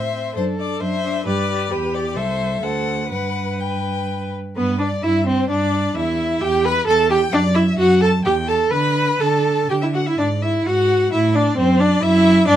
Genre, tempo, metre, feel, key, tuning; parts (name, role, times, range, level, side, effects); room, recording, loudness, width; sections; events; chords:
quick classical-period movement for string quartet; 121-135 BPM; 3/4; rubato; G major; A4 = 440 Hz
clear violin; melody; 0.0-12.6 s; B4 to B5; -26 LUFS; left 6 dB
rich violin; second line; 0.0-12.6 s; C4 to B5; -27 LUFS; left 4 dB
rich viola; accompaniment; 0.0-12.6 s; B3 to C5; -19 LUFS; right 1 dB
rich cello; bass; 0.0-12.6 s; C2 to D3; -21 LUFS; right 2 dB
moderate studio reverb, RT60 0.8 s; dark, warm production; -16 LUFS; side -11 dB against mid
0.0-4.6 A section; 4.6-12.6 B section
0.4 D7/F#; 1.3 G; 1.7 Em; 2.2 Am/C; 2.6 D7; 3.1 G; 4.6 G5; 6.0 Emadd11; 7.3 Dadd9/F#; 8.3 Emadd11; 8.7 D5; 10.2 E9/G#; 11.1 A5; 11.6 D9/F#